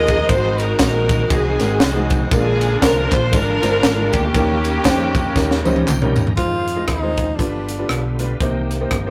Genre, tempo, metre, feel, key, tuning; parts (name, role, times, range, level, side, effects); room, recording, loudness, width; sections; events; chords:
uptempo gospel; 118 BPM; 4/4; swing 58% on 8ths; Ab major; A4 = 440 Hz
rich studio string section; melody; 0.0-5.9 s; Bb3 to Eb5; -22 LUFS; equal
bright upright piano; accompaniment; 0.0-9.1 s; G2 to Eb5; -26 LUFS; equal
bright tonewheel organ; sustained chords; 0.0-9.1 s; D3 to Bb5; -31 LUFS; equal
fingered electric bass; bass; 0.0-9.1 s; G1 to F2; -25 LUFS; equal
crisp fusion drum kit; drums; 0.1-9.0 s; hi-hat, kick drum, ride cymbal, rim click, snare drum, toms; -22 LUFS; equal
tambourine and handclaps; percussion; 0.1-6.3 s; -34 LUFS; equal
breathy tenor saxophone; melody; 6.4-8.2 s; D4 to F4; -26 LUFS; equal
light reverb; rough rehearsal-room recording, tube saturation; -18 LUFS; mono
0.0-6.4 A section; 6.4-9.1 B section
drum fill 5.4-6.4; tonewheel organ fill 5.4-6.4
0.3 Ab7; 2.3 Bb7; 4.3 Eb7; 6.4 Fm7; 7.4 G7; 8.4 Cm7